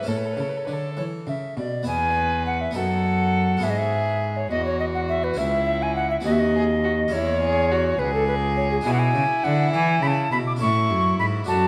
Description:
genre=classical, baroque-style sonata movement with continuo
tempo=68 BPM (dotted quarters)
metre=6/8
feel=straight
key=E major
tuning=A4 = 442 Hz
part: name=mellow alto recorder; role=melody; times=0.0-11.7 s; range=G#4 to D6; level=-26 LUFS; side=equal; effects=none
part: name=warm violin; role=second line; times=0.0-11.7 s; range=E4 to B4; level=-31 LUFS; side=equal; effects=none
part: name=harpsichord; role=accompaniment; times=0.0-11.7 s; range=C#2 to A4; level=-31 LUFS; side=equal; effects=none
part: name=rich cello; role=bass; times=0.0-11.7 s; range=C#2 to E3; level=-28 LUFS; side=equal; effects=none
room=wet recital hall reverb, RT60 1.5 s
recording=none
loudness=-23 LUFS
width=mono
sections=0.0-1.9 A section; 1.9-11.7 A section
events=none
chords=0.1 A; 1.9 E; 2.8 B7/F#; 3.6 E/G#; 5.4 C#m; 6.3 G#7/D#; 7.1 C#m/E; 8.9 E7/B; 10.6 A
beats=| 0.08 0.97 | 1.87 2.76 | 3.64 4.51 | 5.38 6.26 | 7.13 8.00 | 8.87 9.74 | 10.61 11.49

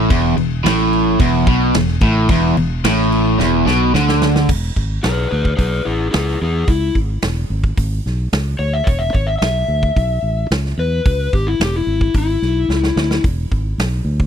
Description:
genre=blues rock power trio and southern rock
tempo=110 BPM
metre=4/4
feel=straight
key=E mixolydian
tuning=A4 = 440 Hz
part: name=crunchy overdriven guitar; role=riff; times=0.0-4.5 s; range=E2 to D3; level=-14 LUFS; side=equal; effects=none
part: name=fingered electric bass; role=bass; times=0.0-14.3 s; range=E1 to E2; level=-18 LUFS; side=equal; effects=none
part: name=big rock drum kit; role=drums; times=0.1-14.3 s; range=crash cymbal, hi-hat, kick drum, snare drum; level=-20 LUFS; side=equal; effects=none
part: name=overdriven slide guitar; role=melody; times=5.0-13.2 s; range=E4 to E5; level=-20 LUFS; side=left 4 dB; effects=none
room=little or no reverb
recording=dry, close 1970s-style studio recording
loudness=-14 LUFS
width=side -8 dB against mid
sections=0.0-4.5 A section; 4.5-14.3 B section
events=drum fill 3.4-4.5, 12.7-13.2; electric slide guitar solo 4.5-14.3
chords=0.0 E5; 4.5 E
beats=| 0.10 0.65 1.20 1.75 | 2.29 2.84 3.39 3.94 | 4.49 5.04 5.58 6.13 | 6.68 7.23 7.78 8.32 | 8.87 9.42 9.97 10.51 | 11.06 11.61 12.15 12.70 | 13.24 13.79

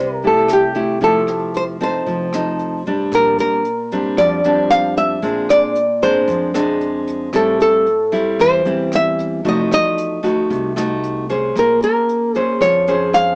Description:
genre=bossa nova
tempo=114 BPM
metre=4/4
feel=straight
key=unclear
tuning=A4 = 441 Hz
part: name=nylon-string guitar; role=melody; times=0.0-13.4 s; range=G4 to F5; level=-18 LUFS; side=equal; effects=cassette tape
part: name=nylon-string guitar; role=accompaniment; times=0.0-13.4 s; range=A2 to C5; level=-22 LUFS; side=equal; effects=none
part: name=upright bass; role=bass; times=0.0-13.4 s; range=F1 to F2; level=-33 LUFS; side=equal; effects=none
part: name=jazz brush drum kit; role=drums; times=0.2-13.3 s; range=hi-hat, kick drum, rim click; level=-38 LUFS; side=equal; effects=none
room=light reverb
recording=home recording on cassette, small speaker sound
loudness=-17 LUFS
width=mono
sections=0.0-3.1 A section; 3.1-13.4 B section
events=none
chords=0.0 Fmaj9; 2.1 F7; 3.1 Bb69; 5.2 Bb9; 7.3 Am7; 9.4 F7b9; 11.6 Bbm9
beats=0.48 | 1.01 1.54 2.06 2.59 | 3.12 3.65 4.17 4.70 | 5.23 5.75 6.28 6.81 | 7.33 7.86 8.39 8.92 | 9.45 9.97 10.50 11.03 | 11.55 12.08 12.61 13.14

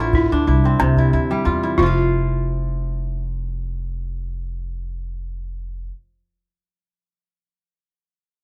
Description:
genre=west african traditional, West African string and xylophone music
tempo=91 BPM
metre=4/4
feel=swing 53% on 16ths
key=unclear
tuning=A4 = 440 Hz
part: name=kora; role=arpeggios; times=0.0-6.0 s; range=C3 to F5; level=-24 LUFS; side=equal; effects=none
part: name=upright bass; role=bass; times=0.0-5.9 s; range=F1 to E2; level=-24 LUFS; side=equal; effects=none
part: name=balafon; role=melody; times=0.1-5.9 s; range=E4 to F4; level=-25 LUFS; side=equal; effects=none
part: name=calabash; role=percussion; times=0.1-2.1 s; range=none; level=-25 LUFS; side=equal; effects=none
room=moderate small room reverb, RT60 0.5 s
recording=band playing live in one room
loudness=-20 LUFS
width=mono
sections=0.0-1.8 A section; 1.8-4.4 B section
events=none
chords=0.5 C; 1.8 N.C.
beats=0.47 1.13 | 1.79 2.45 3.10 3.76

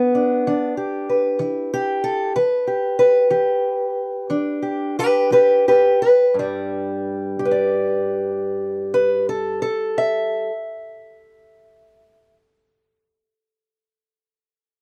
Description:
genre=acoustic country blues, solo or duo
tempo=57-64 BPM (dotted quarters)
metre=12/8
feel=straight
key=E minor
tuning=A4 = 440 Hz
part: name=fingerpicked acoustic archtop guitar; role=solo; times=0.0-12.4 s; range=G2 to E5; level=-20 LUFS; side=equal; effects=none
room=light reverb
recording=close, detailed microphones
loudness=-20 LUFS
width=mono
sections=0.0-6.3 A section; 6.3-10.6 B section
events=slowing down 1.1-6.3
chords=0.0 Em7; 5.3 G7/F; 6.3 Em7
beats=0.46 1.40 | 2.35 3.31 4.29 5.30 | 6.34 7.39 8.45 9.51

